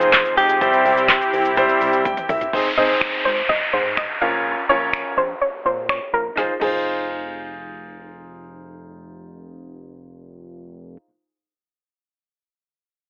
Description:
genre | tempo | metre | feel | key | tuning
dance-pop | 125 BPM | 4/4 | straight | F minor | A4 = 439 Hz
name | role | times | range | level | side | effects
direct-recorded clean electric guitar | melody | 0.0-2.3 s | G4 to C5 | -22 LUFS | equal | spring reverb, digital delay
clear grand piano | accompaniment | 0.0-11.1 s | G3 to G5 | -23 LUFS | equal | low-pass filter
soft supersaw | sustained chords | 0.0-2.5 s | C3 to Ab4 | -26 LUFS | equal | sidechain pumping
chorused synth bass | bass | 0.0-11.0 s | F1 to Bb2 | -37 LUFS | equal | sidechain pumping
deep house drum kit | drums | 0.0-6.7 s | crash cymbal, finger snaps, handclaps, hi-hat, kick drum, shaker, snare drum, toms | -23 LUFS | equal | none
egg shaker | percussion | 0.0-2.5 s | none | -59 LUFS | equal | none
downlifter | sound effects | 2.5-6.4 s | none | -27 LUFS | equal | none
soft round pluck | melody | 2.8-7.8 s | Ab4 to F5 | -24 LUFS | equal | chorus, sidechain pumping, low-pass filter
room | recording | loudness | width
moderate digital room reverb, RT60 1.0 s | telephone sound | -19 LUFS | mono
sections
0.0-2.5 A section; 2.5-6.4 B section; 6.4-10.2 C section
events
grand piano fill 1.8-2.5; drum fill 2.1-2.5; filter sweep 2.5-6.4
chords
0.0 Fm7; 0.6 C; 2.5 Ab; 4.2 Bbm; 6.4 Fm7

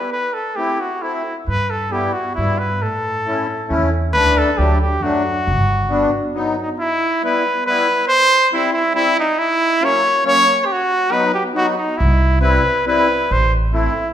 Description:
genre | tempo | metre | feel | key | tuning
alpine folk, alpine dance band | 137 BPM | 3/4 | straight | E harmonic minor from 6.8 s | A4 = 440 Hz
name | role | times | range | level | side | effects
clear trumpet | melody | 0.0-14.1 s | D#4 to C#5 | -16 LUFS | equal | none
accordion | accompaniment | 0.6-13.9 s | F#3 to E4 | -22 LUFS | left 2 dB | light tremolo tuning
upright bass | bass | 1.5-6.0, 12.0-13.9 s | G1 to A2 | -19 LUFS | right 1 dB | none
room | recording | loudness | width
wet recital hall reverb, RT60 1.7 s | minimal, uncompressed stereo recording | -15 LUFS | side -10 dB against mid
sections
0.0-6.8 A section; 6.8-14.1 B section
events
break 6.3-6.8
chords
0.1 Am; 1.5 Em/G; 2.8 A; 4.1 Dsus4; 4.6 D; 5.5 G; 6.3 B; 6.8 Em; 8.1 C; 9.4 F#7; 10.7 B; 12.0 C; 13.3 Am

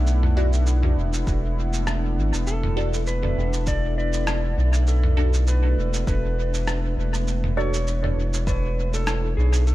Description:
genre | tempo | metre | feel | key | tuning
ambient dub | 100 BPM | 4/4 | swing 55% on 16ths | unclear | A4 = 445 Hz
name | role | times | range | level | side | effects
warm analog pad | sustained chords | 0.0-9.7 s | A3 to F#5 | -31 LUFS | equal | chorus
round analog bass | bass | 0.0-9.7 s | E1 to B1 | -21 LUFS | equal | none
lo-fi sampler-style drum kit | drums | 0.1-9.7 s | rim click, shaker, toms | -30 LUFS | equal | dub echo
filtered dub chord stab | stabs | 0.4-7.8 s | D4 to A4 | -33 LUFS | right 2 dB | phaser, lush chorus, dub echo
electronic kick drum | drums | 1.3-8.6 s | none | -26 LUFS | equal | overdrive
clean lap steel guitar | melody | 2.5-9.7 s | G#4 to D5 | -30 LUFS | equal | dub echo
room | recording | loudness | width
digital ambience | echo-heavy mix | -20 LUFS | side -16 dB against mid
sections
0.0-9.7 A section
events
none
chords
0.0 Dadd9; 2.5 E9sus4

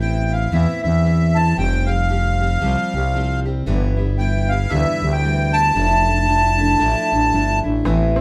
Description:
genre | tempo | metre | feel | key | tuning
acoustic folk duo or small band | 115 BPM | 4/4 | swing 60% on 8ths | unclear | A4 = 441 Hz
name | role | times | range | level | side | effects
accordion | melody | 0.0-7.6 s | E5 to A5 | -22 LUFS | equal | light tremolo tuning
picked steel-string acoustic guitar | accompaniment | 0.0-8.2 s | G2 to G4 | -26 LUFS | equal | none
growling FM bass | bass | 0.0-8.2 s | F1 to E2 | -21 LUFS | equal | none
open-back banjo | arpeggios | 7.9-8.2 s | E3 to C4 | -23 LUFS | equal | none
room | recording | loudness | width
moderate studio reverb, RT60 0.8 s | band playing live in one room | -18 LUFS | mono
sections
0.0-7.8 A section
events
none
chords
0.0 Amadd9; 1.6 Fsus2; 3.7 G6; 5.8 Dmadd9/F

